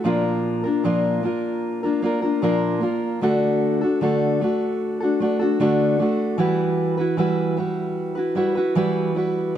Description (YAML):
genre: pop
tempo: 76 BPM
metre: 4/4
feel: straight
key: unclear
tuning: A4 = 440 Hz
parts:
  - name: fingerpicked steel-string acoustic guitar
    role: solo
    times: 0.0-9.6 s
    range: Bb2 to B4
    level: -19 LUFS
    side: equal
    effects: none
room: moderate echo chamber reverb, RT60 2.2 s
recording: none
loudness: -19 LUFS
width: side -10 dB against mid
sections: 0.1-9.6 A section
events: none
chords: 0.1 Bb; 3.2 D; 6.4 Emadd9